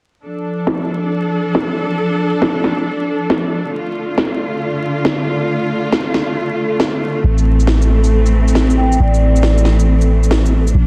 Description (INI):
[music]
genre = future garage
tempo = 137 BPM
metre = 4/4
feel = swing 67% on 16ths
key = unclear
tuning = A4 = 439 Hz
[part]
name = clear studio string section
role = sustained chords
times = 0.2-10.9 s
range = D3 to A4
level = -20 LUFS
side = equal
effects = vintage 12-bit sampler grit
[part]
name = electronic snare drum and shaker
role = drums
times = 0.7-10.7 s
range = none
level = -22 LUFS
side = equal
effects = low-pass filter on snare, low-pass filter on perc, low-pass filter on room
[part]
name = soft 808-style bass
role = bass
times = 7.2-10.9 s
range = A1 to Bb1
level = -14 LUFS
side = equal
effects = tube saturation
[part]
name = vibraphone with medium mallets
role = melody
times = 8.8-9.6 s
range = D5 to G5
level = -24 LUFS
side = equal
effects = analog delay
[sound]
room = light reverb, small room ambience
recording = dense, heavily limited modern master, vinyl crackle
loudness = -16 LUFS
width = mono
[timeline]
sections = 0.2-10.9 A section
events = filter sweep on drum 0.2-10.9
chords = 0.2 F6; 3.7 Dm; 7.2 Am